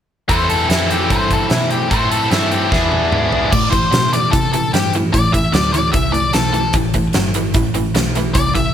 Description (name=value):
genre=blues rock power trio and southern rock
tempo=149 BPM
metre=4/4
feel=straight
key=A minor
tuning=A4 = 440 Hz
part: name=octave-fuzz lead guitar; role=melody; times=0.3-8.7 s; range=E4 to E5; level=-19 LUFS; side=left 3 dB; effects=distortion
part: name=biting overdriven guitar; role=riff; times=0.3-8.7 s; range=A2 to A4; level=-18 LUFS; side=right 1 dB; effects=none
part: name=vintage muted picked electric bass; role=bass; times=0.3-8.7 s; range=G1 to C3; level=-21 LUFS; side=equal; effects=none
part: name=huge arena drum kit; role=drums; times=0.3-8.6 s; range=crash cymbal, hi-hat, kick drum, snare drum, toms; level=-19 LUFS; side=right 1 dB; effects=none
room=little or no reverb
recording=none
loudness=-13 LUFS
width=side -9 dB against mid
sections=0.3-3.5 A section; 3.5-8.7 B section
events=drum fill 2.7-3.5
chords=0.3 Am7; 2.7 E7; 3.5 Am7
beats=| 0.29 0.70 1.10 1.50 | 1.91 2.31 2.71 3.12 | 3.52 3.92 4.33 4.73 | 5.13 5.53 5.93 6.34 | 6.74 7.14 7.54 7.95 | 8.35